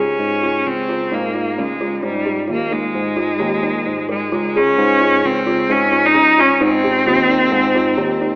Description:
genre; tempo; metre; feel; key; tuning
contemporary instrumental, chamber music in an uneven meter; 131 BPM; 5/4; straight; Ab major; A4 = 439 Hz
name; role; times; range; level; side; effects
clear cello; melody; 0.0-8.4 s; G3 to Eb4; -16 LUFS; equal; none
kalimba; arpeggios; 0.0-8.4 s; Db4 to Bb4; -20 LUFS; equal; none
barky tine electric piano; bass; 0.0-8.4 s; Db2 to Ab2; -22 LUFS; equal; none
room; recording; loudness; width
wet concert hall reverb, RT60 2.2 s; AM radio sound; -14 LUFS; side -25 dB against mid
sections
0.0-8.4 A section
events
none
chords
0.0 Dbmaj7; 2.0 Ab5; 4.3 Dbmaj7; 6.6 Abmaj7

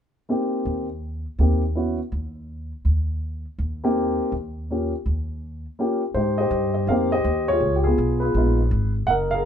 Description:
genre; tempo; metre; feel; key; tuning
jazz piano trio; 164 BPM; 4/4; swing 64% on 8ths; unclear; A4 = 440 Hz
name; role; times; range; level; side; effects
warm upright piano; melody; 0.3-9.5 s; Ab3 to Gb5; -22 LUFS; left 1 dB; none
upright bass; bass; 0.7-9.4 s; Gb1 to Ab2; -24 LUFS; equal; none
room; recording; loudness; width
moderate studio reverb, RT60 0.9 s; band playing live in one room; -21 LUFS; side -8 dB against mid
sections
0.3-6.2 A section; 6.2-9.5 B section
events
none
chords
0.3 Eb6; 6.2 Abmaj7; 7.6 Db7

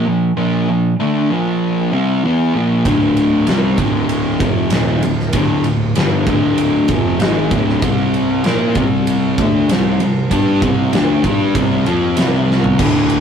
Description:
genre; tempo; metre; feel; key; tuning
stoner and doom metal; 97 BPM; 4/4; straight; unclear; A4 = 440 Hz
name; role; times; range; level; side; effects
fuzz guitar; riff; 0.0-13.2 s; D2 to Bb4; -14 LUFS; left 1 dB; distortion
fuzz picked electric bass; bass; 2.9-13.2 s; D1 to Bb2; -23 LUFS; equal; overdrive
big rock drum kit; drums; 2.9-13.2 s; crash cymbal, kick drum, ride cymbal, snare drum, toms; -18 LUFS; right 2 dB; none
room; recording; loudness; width
light reverb; rough rehearsal-room recording, warm saturation; -13 LUFS; side -7 dB against mid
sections
0.0-12.8 A section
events
drum fill 12.5-12.8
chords
0.0 Bb5; 2.9 Dm; 7.8 C5

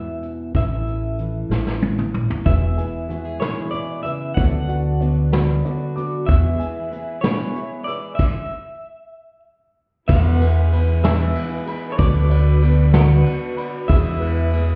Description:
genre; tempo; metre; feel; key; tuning
indie folk with a building arrangement; 63 BPM (dotted quarters); 6/8; straight; E mixolydian; A4 = 440 Hz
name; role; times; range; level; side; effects
electric guitar at the edge of break-up; melody; 0.0-14.8 s; B4 to F#5; -32 LUFS; equal; tremolo
fingerpicked steel-string acoustic guitar; accompaniment; 0.0-6.3 s; E2 to A4; -30 LUFS; equal; none
vintage brush drum kit; drums; 0.2-14.7 s; crash cymbal, hi-hat, kick drum, ride cymbal, snare drum, toms; -24 LUFS; equal; none
upright bass; bass; 0.5-6.6, 10.1-14.8 s; E1 to E2; -20 LUFS; equal; none
tube shaker; percussion; 2.4-14.7 s; none; barely audible; none; none
picked twelve-string acoustic guitar; accompaniment; 2.5-14.8 s; E2 to G#4; -30 LUFS; equal; none
warm upright piano; arpeggios; 2.5-14.8 s; G#4 to E6; -35 LUFS; equal; none
rich chamber string section; sustained chords; 6.3-14.8 s; D3 to B4; -37 LUFS; equal; none
warm fiddle; second line; 10.1-14.8 s; F#4 to B4; -36 LUFS; equal; none
room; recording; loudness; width
small room ambience; heard muffled through a wall, stone room reverb, EQ; -20 LUFS; mono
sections
0.0-2.5 A section; 2.5-10.1 B section; 10.1-14.8 C section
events
drum fill 1.5-2.5; stop 8.2-10.1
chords
0.0 E; 0.5 A; 2.5 E; 4.4 Bm/D; 6.3 E; 8.2 N.C.; 10.1 E; 12.0 Bm/D; 13.9 E

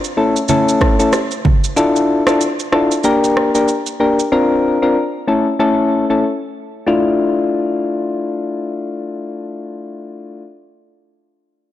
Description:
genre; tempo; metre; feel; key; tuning
afrobeats; 94 BPM; 4/4; swing 58% on 16ths; D minor; A4 = 440 Hz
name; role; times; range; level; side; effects
afro-pop drum kit; drums; 0.0-4.3 s; kick drum, rim click, shaker; -19 LUFS; right 1 dB; soft clipping on snare
soft electric-piano-like synth keys; accompaniment; 0.2-10.4 s; A3 to Bb4; -15 LUFS; left 2 dB; chorus
congas and bongos; percussion; 0.5-1.6 s; none; -22 LUFS; right 6 dB; none
room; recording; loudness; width
moderate plate reverb, RT60 2.6 s; blown-out, overdriven recording, overdrive; -13 LUFS; side -13 dB against mid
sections
0.0-6.9 A section; 6.9-9.4 B section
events
none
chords
0.2 A; 1.8 Dmadd9; 3.0 Gm; 4.3 Bbadd9; 5.3 A; 6.9 Dmadd9

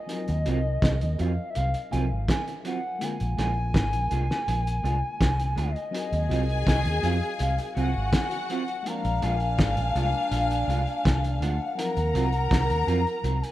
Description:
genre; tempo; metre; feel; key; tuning
lovers rock reggae; 82 BPM; 4/4; straight; Eb dorian; A4 = 440 Hz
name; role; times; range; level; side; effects
hollow clarinet-like synth lead; melody; 0.0-13.5 s; Eb5 to Bb5; -32 LUFS; equal; chorus, tape echo
FM electric piano with tremolo; accompaniment; 0.0-13.5 s; D3 to Bb4; -39 LUFS; left 3 dB; tape echo
cloth-damped thuddy drum kit; drums; 0.1-13.5 s; hi-hat, kick drum, snare drum; -27 LUFS; equal; none
vintage muted fingered electric bass; bass; 0.3-13.4 s; Ab1 to F2; -26 LUFS; equal; none
electric guitar through a small old amp; stabs; 0.5-13.0 s; Gb3 to F4; -35 LUFS; right 5 dB; tape echo
warm studio string section; second line; 5.9-13.5 s; D4 to Bb5; -29 LUFS; left 2 dB; none
room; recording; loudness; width
light reverb, small room ambience; rough home demo mix, faint mains hum; -23 LUFS; side -14 dB against mid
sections
0.0-13.5 A section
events
none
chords
0.1 Ebm69; 3.0 Bb7; 5.9 Ebm69; 8.9 Bb7; 11.8 Ebm69

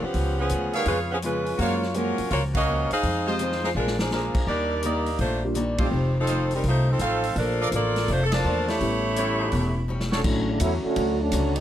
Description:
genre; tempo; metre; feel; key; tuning
jazz, big band swing; 166 BPM; 4/4; swing 66% on 8ths; unclear; A4 = 440 Hz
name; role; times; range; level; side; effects
warm saxophone section; melody; 0.0-9.9 s; F3 to F5; -26 LUFS; equal; none
picked acoustic archtop guitar; accompaniment; 0.0-11.6 s; F2 to F4; -33 LUFS; left 3 dB; none
upright bass; bass; 0.0-11.6 s; E1 to Gb2; -27 LUFS; equal; none
vintage drum kit; drums; 0.1-11.6 s; crash cymbal, hi-hat, kick drum, ride cymbal, snare drum; -31 LUFS; equal; none
clear trumpet section; stabs; 0.7-10.2 s; D4 to A5; -30 LUFS; right 2 dB; none
warm upright piano; accompaniment; 1.6-5.9, 8.8-11.3 s; D3 to G4; -31 LUFS; equal; none
mellow trombone section; second line; 10.2-11.6 s; C#3 to F#4; -25 LUFS; right 2 dB; none
room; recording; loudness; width
little or no reverb; close, detailed microphones; -22 LUFS; side -11 dB against mid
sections
0.0-10.2 A section; 10.2-11.6 B section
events
band accent 2.5, 5.7, 8.3; drum fill 3.7-4.1, 9.9-10.2; trombone section solo 10.2-11.6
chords
0.1 Db7; 1.6 Gbmaj7; 3.0 Fm7; 3.7 Bb7; 4.5 Ebmaj7; 5.9 F7; 7.4 Bbmaj7; 8.8 A7; 10.2 Dmaj7

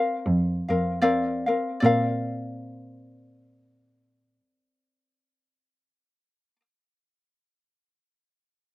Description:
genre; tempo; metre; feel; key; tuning
Hawaiian; 72-82 BPM; 4/4; swing 57% on 8ths; Bb major; A4 = 439 Hz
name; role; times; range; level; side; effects
metal-body resonator slide guitar; melody; 0.0-1.0 s; none; barely audible; none; none
ukulele; accompaniment; 0.0-6.6 s; C4 to F5; -24 LUFS; left 2 dB; none
dark cello; bass; 0.3-5.9 s; F2 to Bb2; -26 LUFS; right 1 dB; none
room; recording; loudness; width
little or no reverb; recorded outdoors, with no room sound; -22 LUFS; side -17 dB against mid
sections
0.0-1.8 A section; 1.8-5.2 B section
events
slowing down 0.0-1.8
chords
0.0 Bbadd9

